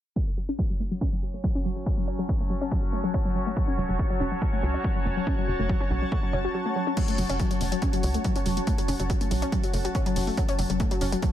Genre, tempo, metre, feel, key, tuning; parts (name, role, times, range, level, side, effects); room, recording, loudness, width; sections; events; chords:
driving peak-time techno; 141 BPM; 4/4; straight; F# minor; A4 = 440 Hz
warbly dusty pluck; riff; 0.2-11.2 s; F#3 to C#4; -30 LUFS; left 1 dB; chorus, overdrive, sidechain pumping, ping-pong delay
analog drone; drone; 0.8-11.3 s; F#3 to C#4; -36 LUFS; equal; chorus, sidechain pumping
electronic kick drum; drums; 0.2-11.3 s; -27 LUFS; equal; studio reverb
granular cloud pad; texture; 1.7-11.3 s; F#4 to A5; -33 LUFS; equal; built-in reverb, sidechain pumping
tight sequencer bass; bass; 3.8-11.2 s; F#1 to C#2; -29 LUFS; equal; tube saturation, sidechain pumping
techno drum kit; drums; 7.0-11.3 s; crash cymbal, hi-hat; -36 LUFS; left 1 dB; overdrive, studio reverb
digital ambience; low-pass filter; -24 LUFS; side -12 dB against mid
0.2-7.0 A section; 7.0-11.3 B section
filter sweep on synth arpeggio sound 0.2-7.0; filter sweep 0.2-7.0; kick drops out 6.5-7.0
0.2 F#m